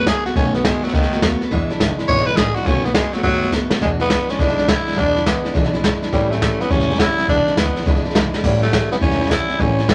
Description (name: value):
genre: rockabilly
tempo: 208 BPM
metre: 4/4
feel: swing 64% on 8ths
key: E mixolydian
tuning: A4 = 440 Hz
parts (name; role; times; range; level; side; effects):
- growling tenor saxophone; melody; 0.0-9.9 s; D#3 to C#5; -22 LUFS; equal; none
- picked steel-string acoustic guitar; accompaniment; 0.0-9.9 s; E2 to F#4; -24 LUFS; equal; none
- upright bass; bass; 0.0-9.9 s; E1 to F#2; -26 LUFS; equal; none
- jazz brush drum kit; drums; 0.1-9.9 s; crash cymbal, hi-hat, kick drum, snare drum; -22 LUFS; equal; none
room: moderate studio reverb, RT60 0.5 s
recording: none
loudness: -18 LUFS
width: mono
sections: 0.0-3.8 A section; 3.8-9.9 B section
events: tenor saxophone solo 0.0-3.8; drum fill 3.5, 8.3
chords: 0.0 B7; 1.5 E7; 2.7 B7; 3.8 E7; 6.1 A7; 7.3 E7; 8.4 A7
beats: 0.07 | 0.36 0.65 0.94 1.22 | 1.51 1.80 2.09 2.38 | 2.67 2.95 3.24 3.53 | 3.82 4.11 4.39 4.68 | 4.97 5.26 5.55 5.84 | 6.13 6.42 6.71 6.99 | 7.28 7.57 7.86 8.15 | 8.44 8.73 9.02 9.31 | 9.60 9.89